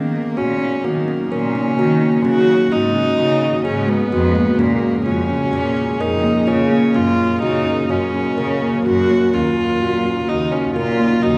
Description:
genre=contemporary instrumental, chamber music in an uneven meter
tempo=127 BPM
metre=5/4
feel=straight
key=unclear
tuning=A4 = 440 Hz
part: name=warm viola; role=second line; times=0.0-11.4 s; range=Bb3 to Gb4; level=-22 LUFS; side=equal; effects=none
part: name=ethereal airy pad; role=sustained chords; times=0.8-11.4 s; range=Db3 to Bb4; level=-28 LUFS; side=equal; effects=ensemble chorus, built-in reverb
part: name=kalimba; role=arpeggios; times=0.0-11.4 s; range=Ab3 to Bb4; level=-21 LUFS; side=equal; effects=none
part: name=rich cello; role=bass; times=0.0-11.4 s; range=Eb2 to Eb3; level=-25 LUFS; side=equal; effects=none
room=wet cathedral reverb, RT60 5.2 s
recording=recorded in a church or concert hall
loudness=-17 LUFS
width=mono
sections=0.0-11.4 A section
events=none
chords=0.0 Ebm7; 2.3 Dbsus4; 4.6 Bbm7; 7.0 Gb; 9.3 Ebm7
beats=0.37 0.84 1.31 1.78 | 2.25 2.72 3.19 3.66 4.13 | 4.60 5.07 5.54 6.00 6.48 | 6.95 7.42 7.90 8.38 8.86 | 9.34 9.81 10.29 10.76 11.23

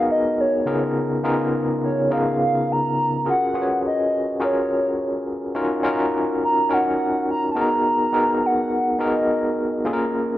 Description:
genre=soul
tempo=104 BPM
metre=4/4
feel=straight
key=unclear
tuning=A4 = 440 Hz
part: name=hollow clarinet-like synth lead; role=melody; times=0.0-9.9 s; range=Db5 to Bb5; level=-22 LUFS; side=equal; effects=chorus
part: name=overdriven tine electric piano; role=accompaniment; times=0.0-10.4 s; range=Db3 to Db5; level=-21 LUFS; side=left 1 dB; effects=fast tremolo, tube saturation
room=moderate lush hall reverb, RT60 2.2 s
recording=rough home demo mix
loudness=-19 LUFS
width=side -14 dB against mid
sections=0.0-10.4 A section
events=none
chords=0.0 Abm9; 0.7 Db13; 3.3 Gbmaj9; 5.6 Ebm9; 7.6 Abm9; 9.9 Bbm7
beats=0.39 | 0.96 1.54 2.11 2.69 | 3.26 3.84 4.41 4.99 | 5.56 6.13 6.71 7.28 | 7.86 8.43 9.00 9.58 | 10.15

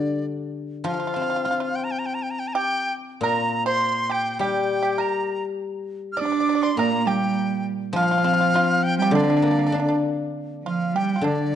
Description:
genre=chinese traditional, Chinese chamber ensemble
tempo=101 BPM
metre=2/4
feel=rubato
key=D jue mode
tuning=A4 = 441 Hz
part: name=bright reedy dizi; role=melody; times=0.0-11.6 s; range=D5 to F6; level=-25 LUFS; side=equal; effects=none
part: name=guzheng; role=accompaniment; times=0.0-11.6 s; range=Bb2 to F4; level=-25 LUFS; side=left 3 dB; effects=none
part: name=pipa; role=second line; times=0.8-11.6 s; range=D4 to D5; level=-28 LUFS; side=right 4 dB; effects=none
part: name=rich cello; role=second line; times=6.2-11.6 s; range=D3 to D4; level=-24 LUFS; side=right 5 dB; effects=none
room=moderate recital hall reverb, RT60 1.6 s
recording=dark, warm production, nothing above 10.9 kHz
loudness=-20 LUFS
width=side -10 dB against mid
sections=0.9-10.3 A section; 10.3-11.6 B section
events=none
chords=none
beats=0.25 | 0.86 1.46 | 2.06 2.65 | 3.23 3.82 | 4.41 5.00 | 5.60 6.20 | 6.79 7.37 | 7.95 8.54 | 9.13 9.73 | 10.34 10.94 | 11.54

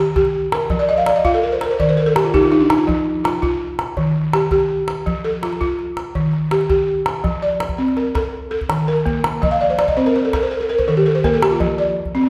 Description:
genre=west african traditional, West African string and xylophone music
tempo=110 BPM (dotted quarters)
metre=12/8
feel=straight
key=F mixolydian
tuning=A4 = 440 Hz
part: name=balafon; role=arpeggios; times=0.0-12.3 s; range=Eb3 to F5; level=-18 LUFS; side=equal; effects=none
part: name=calabash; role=percussion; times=0.2-12.3 s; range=none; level=-26 LUFS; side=equal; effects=none
room=wet recital hall reverb, RT60 1.6 s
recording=none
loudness=-18 LUFS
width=mono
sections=0.0-7.2 A section; 7.2-12.3 B section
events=balafon fill 0.8-2.9, 9.4-11.6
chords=0.0 Eb (rootless); 0.7 Fadd11; 1.8 Eb; 2.9 N.C.; 4.0 Eb; 5.1 F; 6.2 Eb; 7.2 F; 8.3 Eb5; 9.4 F; 10.5 Eb5; 11.6 F5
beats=0.16 | 0.70 1.25 1.80 2.34 | 2.89 3.43 3.98 4.52 | 5.07 5.61 6.16 6.70 | 7.24 7.79 8.33 8.88 | 9.42 9.97 10.51 11.06 | 11.60 12.15

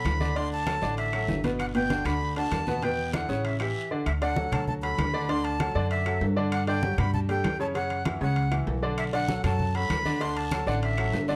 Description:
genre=latin, salsa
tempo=195 BPM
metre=4/4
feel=straight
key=D major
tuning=A4 = 439 Hz
part: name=breathy bright jazz flute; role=melody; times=0.0-11.3 s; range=E5 to C6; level=-33 LUFS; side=equal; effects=plate reverb
part: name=bright baby grand piano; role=accompaniment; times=0.0-11.4 s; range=B2 to D5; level=-33 LUFS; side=equal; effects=none
part: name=upright bass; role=bass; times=0.0-11.4 s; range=G1 to G2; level=-32 LUFS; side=equal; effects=none
part: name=congas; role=percussion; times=0.0-11.3 s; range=none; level=-36 LUFS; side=equal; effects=none
part: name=guiro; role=percussion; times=0.0-3.8, 9.0-11.4 s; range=none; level=-48 LUFS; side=equal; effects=none
part: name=claves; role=percussion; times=0.1-11.1 s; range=none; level=-46 LUFS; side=equal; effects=none
part: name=timbales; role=percussion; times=0.1-11.3 s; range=none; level=-40 LUFS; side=equal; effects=none
room=moderate studio reverb, RT60 0.6 s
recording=none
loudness=-27 LUFS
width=mono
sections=0.0-4.1 A section; 4.1-11.4 A section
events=none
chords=0.4 D; 1.6 Gmaj7; 2.8 Em9; 3.4 A7; 4.1 D; 5.3 Dadd9; 6.5 Gsus2; 7.8 F#5; 9.0 Bm7; 10.2 D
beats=0.05 | 0.36 0.67 0.98 1.29 | 1.59 1.90 2.21 2.52 | 2.83 3.14 3.44 3.75 | 4.06 4.37 4.68 4.98 | 5.29 5.60 5.91 6.21 | 6.52 6.83 7.14 7.44 | 7.75 8.06 8.37 8.67 | 8.98 9.29 9.59 9.90 | 10.21 10.52 10.82 11.13

